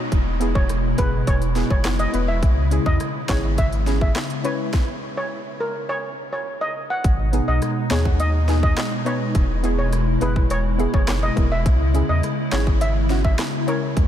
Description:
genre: dancehall.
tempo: 104 BPM.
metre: 4/4.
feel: straight.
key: unclear.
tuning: A4 = 440 Hz.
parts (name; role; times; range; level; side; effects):
hollow soft pad; sustained chords; 0.0-14.1 s; B2 to Gb4; -26 LUFS; left 1 dB; ensemble chorus, sidechain pumping.
downlifter; sound effects; 0.0-2.4 s; none; -43 LUFS; equal; none.
warm sub bass; bass; 0.1-14.1 s; E1 to Fb2; -21 LUFS; equal; none.
island pop drum kit; drums; 0.1-14.1 s; handclaps, hi-hat, kick drum, rim click, snare drum; -23 LUFS; equal; overdrive.
soft round pluck; accompaniment; 0.4-13.8 s; B3 to B4; -28 LUFS; equal; chorus, sidechain pumping.
steel pan; melody; 0.6-13.8 s; Bb4 to Gb5; -27 LUFS; equal; ping-pong delay.
room: light reverb, digital ambience.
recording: none.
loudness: -18 LUFS.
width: side -10 dB against mid.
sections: 0.0-7.0 A section; 7.0-14.1 B section.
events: stop 4.7-7.0.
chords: 0.1 E; 2.4 Dbm; 4.7 N.C.; 7.0 Abm; 9.3 E; 11.7 Dbm.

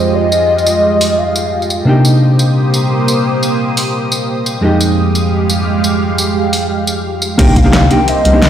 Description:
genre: liquid drum and bass.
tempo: 174 BPM.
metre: 4/4.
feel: straight.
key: C minor.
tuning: A4 = 440 Hz.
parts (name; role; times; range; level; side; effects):
hollow clarinet-like synth lead; melody; 0.0-1.7, 7.4-8.5 s; C5 to G5; -14 LUFS; left 1 dB; chorus, digital delay.
hollow-body jazz guitar; accompaniment; 0.0-8.5 s; F2 to G4; -14 LUFS; equal; digital delay.
lush unison pad; sustained chords; 0.0-8.5 s; Ab3 to Eb6; -16 LUFS; right 1 dB; chorus, phaser.
pop drum kit; drums; 0.3-8.5 s; crash cymbal, hi-hat, snare drum, tambourine; -18 LUFS; equal; studio ambience.
dark detuned saw bass; bass; 7.4-8.5 s; C2; -11 LUFS; equal; none.
electronic kick drum; drums; 7.4-7.6 s; none; -12 LUFS; equal; studio ambience.
jungle sampler-style drum kit; drums; 7.4-8.5 s; hi-hat, snare drum; -23 LUFS; equal; overdrive, high-pass filter on hats, studio ambience, high-pass filter on snare.
room: wet lush hall reverb, RT60 1.7 s.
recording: played on a big sound system in a bare room, large studio reverb.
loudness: -10 LUFS.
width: side -10 dB against mid.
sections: 0.0-7.4 A section; 7.4-8.5 B section.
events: drop 7.4-8.5.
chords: 0.0 Fm9; 1.9 Cm7; 4.6 Fm9; 7.4 Cm7.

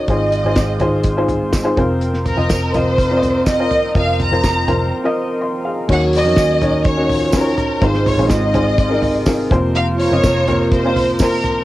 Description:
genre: piano-driven pop.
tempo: 124 BPM.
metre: 4/4.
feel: straight.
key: unclear.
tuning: A4 = 435 Hz.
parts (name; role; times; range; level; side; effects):
warm studio violin section; melody; 0.0-11.6 s; Bb4 to Bb5; -19 LUFS; equal; none.
warm upright piano; accompaniment; 0.0-11.6 s; Ab2 to C6; -19 LUFS; left 1 dB; cassette tape.
chorused pulse-width pad; sustained chords; 0.0-11.6 s; C3 to Bb4; -26 LUFS; right 1 dB; cassette tape.
vintage muted picked electric bass; bass; 0.1-11.6 s; F1 to F2; -21 LUFS; equal; none.
damped 70s drum kit; drums; 0.1-11.6 s; crash cymbal, hi-hat, kick drum, snare drum, toms; -20 LUFS; equal; cassette tape.
tambourine; percussion; 0.6-11.3 s; none; -32 LUFS; right 5 dB; none.
mellow French horn section; second line; 5.9-11.4 s; Eb3 to Gb4; -23 LUFS; right 2 dB; cassette tape, analog delay.
room: moderate booth ambience, RT60 0.3 s.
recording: home recording on cassette.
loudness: -14 LUFS.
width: side -16 dB against mid.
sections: 0.0-5.9 A section; 5.9-11.6 B section.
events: break 4.9-5.9.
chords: 0.1 Ab6; 1.8 Fsus4; 5.9 Ebm7; 7.8 Ab6; 9.5 Fsus4.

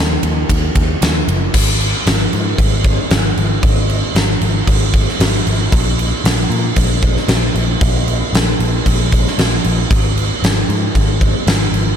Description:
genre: rock, shoegaze and dream pop.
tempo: 115 BPM.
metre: 4/4.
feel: straight.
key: unclear.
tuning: A4 = 440 Hz.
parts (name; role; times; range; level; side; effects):
vintage muted picked electric bass; bass; 0.0-11.9 s; F#1 to A#2; -17 LUFS; equal; none.
huge arena drum kit; drums; 0.2-11.9 s; crash cymbal, kick drum, ride cymbal, snare drum; -14 LUFS; equal; none.
room: little or no reverb.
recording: none.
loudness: -12 LUFS.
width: side -8 dB against mid.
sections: 0.0-1.5 A section; 1.5-12.0 B section.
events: none.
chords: none.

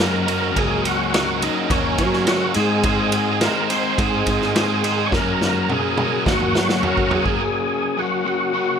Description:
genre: classic rock.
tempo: 105 BPM.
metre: 4/4.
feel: straight.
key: Gb lydian.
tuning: A4 = 440 Hz.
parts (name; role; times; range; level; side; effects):
overdriven tonewheel organ; melody; 0.0-8.8 s; Db4 to Db5; -23 LUFS; right 1 dB; chorus vibrato, fast rotary speaker.
overdriven electric guitar; riff; 0.0-8.8 s; Gb2 to Eb4; -25 LUFS; left 10 dB; none.
tight distorted guitar; riff; 0.0-7.4 s; Gb3 to C5; -24 LUFS; right 11 dB; distortion.
picked electric bass; bass; 0.0-7.2 s; Db2 to Gb3; -24 LUFS; equal; none.
vintage drum kit; drums; 0.0-7.4 s; kick drum, ride cymbal, snare drum, toms; -22 LUFS; right 1 dB; none.
room: moderate studio reverb, RT60 0.5 s.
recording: none.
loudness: -17 LUFS.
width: side -7 dB against mid.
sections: 0.0-7.4 A section; 7.4-8.8 A section.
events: drum fill 5.1-7.4.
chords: 0.0 Gbadd9; 2.6 Ab; 5.1 Gb; 7.4 Gbadd9.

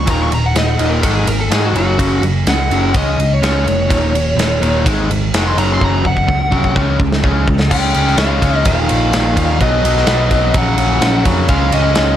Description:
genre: hard rock.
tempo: 126 BPM.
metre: 4/4.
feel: straight.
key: unclear.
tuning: A4 = 440 Hz.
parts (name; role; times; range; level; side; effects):
biting lead guitar; melody; 0.0-12.2 s; Gb4 to Db6; -19 LUFS; equal; overdrive, slapback echo.
cranked stack guitar; riff; 0.0-12.2 s; Eb2 to Db4; -17 LUFS; equal; overdrive.
picked electric bass; bass; 0.0-12.2 s; Eb1 to Ab2; -17 LUFS; equal; none.
big rock drum kit; drums; 0.1-12.1 s; crash cymbal, kick drum, ride cymbal, snare drum; -17 LUFS; equal; none.
room: light reverb, studio reverb.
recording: none.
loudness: -12 LUFS.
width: side -10 dB against mid.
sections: 0.0-7.7 A section; 7.7-12.2 B section.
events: lead electric guitar solo 0.0-7.7; drum fill 5.8-7.7.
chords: 0.1 Eb5; 1.0 Ab5; 1.7 Gb5; 2.9 Db; 3.9 Eb5; 4.9 Ab5; 5.6 Gb5; 6.8 Db5; 8.7 Eb5; 9.6 B; 10.5 Gb/Bb; 11.5 Db5.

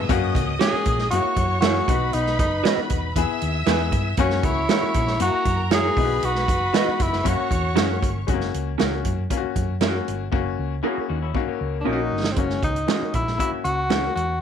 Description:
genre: uptempo 1960s-style soul.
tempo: 117 BPM.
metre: 4/4.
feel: straight.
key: F# mixolydian.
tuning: A4 = 439 Hz.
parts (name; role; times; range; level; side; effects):
bright studio violin section; second line; 0.0-8.2 s; A#4 to E6; -30 LUFS; equal; none.
bright baby grand piano; accompaniment; 0.0-14.3 s; G#3 to G#4; -27 LUFS; left 13 dB; none.
electric guitar through a small old amp; riff; 0.0-0.1, 10.8-12.2 s; A#3 to G#4; -34 LUFS; left 11 dB; spring reverb.
hollow-body short-scale fingered electric bass; bass; 0.0-14.4 s; E1 to G2; -26 LUFS; equal; none.
swinging big-band drum kit; drums; 0.1-14.3 s; hi-hat, kick drum, snare drum; -24 LUFS; right 3 dB; none.
warm tenor saxophone; melody; 0.6-8.0, 11.8-14.4 s; B#3 to G#4; -24 LUFS; equal; slapback echo.
electric guitar through a small old amp; stabs; 0.6-14.0 s; C#4 to E5; -28 LUFS; right 12 dB; spring reverb.
room: light reverb, small room ambience.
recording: 1960s-style stereo with parts hard left and right.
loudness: -20 LUFS.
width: side -8 dB against mid.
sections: 0.0-8.3 A section; 8.3-12.4 B section; 12.4-14.4 C section.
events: drum fill 10.3-12.4.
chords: 0.1 F#; 1.1 F#7; 1.9 B; 3.2 E; 4.2 F#; 5.2 F#7; 6.0 B; 7.2 F#.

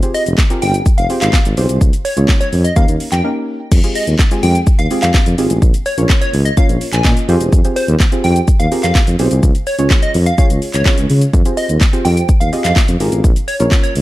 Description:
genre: dance-pop.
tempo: 126 BPM.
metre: 4/4.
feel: straight.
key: F minor.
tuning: A4 = 440 Hz.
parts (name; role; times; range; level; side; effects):
deep mellow chord stab; accompaniment; 0.0-14.0 s; Ab3 to Eb5; -20 LUFS; right 1 dB; chorus, sidechain pumping.
house drum kit; drums; 0.0-14.0 s; crash cymbal, handclaps, hi-hat, kick drum, shaker, snare drum; -13 LUFS; equal; none.
plucky unison lead; melody; 0.1-13.9 s; C5 to Ab5; -20 LUFS; equal; none.
mellow tuba; bass; 0.3-14.0 s; E1 to Db3; -15 LUFS; equal; sidechain pumping.
room: digital ambience.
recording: dark, warm production.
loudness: -11 LUFS.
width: side -16 dB against mid.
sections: 0.0-3.7 A section; 3.7-14.0 A section.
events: drop 0.0-3.7, 3.7-14.0; break 3.2-3.7.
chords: 0.0 Fmadd9; 1.8 Db; 2.8 Eb7; 3.7 Fmadd9; 5.6 Bbm; 7.3 Fmadd9; 9.4 Db; 11.3 Fmadd9; 13.2 Bbm.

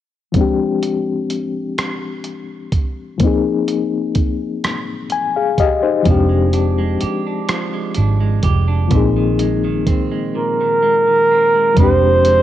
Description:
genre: slow six-eight R&B.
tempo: 42 BPM (dotted quarters).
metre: 6/8.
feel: straight.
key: F dorian.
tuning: A4 = 437 Hz.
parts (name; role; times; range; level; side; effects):
bright reed electric piano; accompaniment; 0.3-12.4 s; F3 to Ab5; -19 LUFS; left 6 dB; overdrive, fast tremolo.
dusty soul sampler-style drum kit; drums; 0.3-12.4 s; hi-hat, kick drum, rim click; -19 LUFS; right 1 dB; cassette tape.
clean electric guitar; second line; 6.1-12.4 s; Bb2 to G4; -24 LUFS; right 9 dB; none.
vintage muted fingered electric bass; bass; 6.1-12.4 s; F1 to Bb1; -16 LUFS; right 1 dB; none.
warm flugelhorn; melody; 10.4-12.4 s; Bb4 to C5; -12 LUFS; right 1 dB; none.
room: light reverb, digital ambience.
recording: home recording on cassette.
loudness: -14 LUFS.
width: side -12 dB against mid.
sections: 0.3-11.8 A section.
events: reed electric piano fill 4.6-6.1.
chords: 0.3 Fm69; 3.2 Bb9sus4; 6.1 Fm69; 8.9 Bb9sus4; 11.8 Fm69.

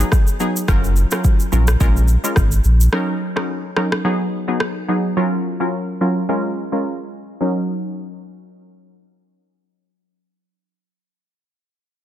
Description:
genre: afrobeats.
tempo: 107 BPM.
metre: 4/4.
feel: swing 55% on 16ths.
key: Eb minor.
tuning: A4 = 436 Hz.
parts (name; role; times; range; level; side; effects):
glassy wavetable pluck; accompaniment; 0.0-11.1 s; Gb3 to Bb4; -20 LUFS; equal; chorus, low-pass filter.
warm sub bass; bass; 0.0-2.9 s; Gb1 to Bb1; -14 LUFS; equal; none.
afro-pop drum kit; drums; 0.0-4.7 s; kick drum, rim click, shaker; -19 LUFS; equal; overdrive.
room: light reverb, digital ambience.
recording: dense, heavily limited modern master.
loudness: -16 LUFS.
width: side -12 dB against mid.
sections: 0.0-7.4 A section; 7.4-9.7 B section.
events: filter sweep on synth pluck 0.0-7.4.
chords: 0.0 Abm7; 0.7 Gbmaj7; 1.8 Bbm7; 2.9 Ebm7; 4.0 Abm7; 5.2 Gbmaj7; 6.3 Bbm7; 7.4 Ebm7.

